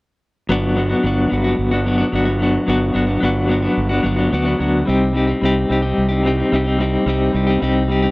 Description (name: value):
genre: rock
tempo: 109 BPM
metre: 4/4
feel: straight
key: G major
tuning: A4 = 440 Hz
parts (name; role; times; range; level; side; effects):
- clean electric guitar; riff; 0.5-8.1 s; F#3 to G4; -16 LUFS; left 1 dB; tremolo
- fuzz fingered electric bass; bass; 0.5-8.1 s; G1 to D2; -20 LUFS; right 1 dB; overdrive
room: light reverb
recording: dry, close 1970s-style studio recording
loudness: -15 LUFS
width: side -22 dB against mid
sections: 0.5-8.1 A section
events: none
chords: 0.5 Gmaj7; 4.9 Cm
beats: | 0.49 1.04 1.59 2.14 | 2.69 3.24 3.79 4.33 | 4.88 5.43 5.98 6.53 | 7.08 7.63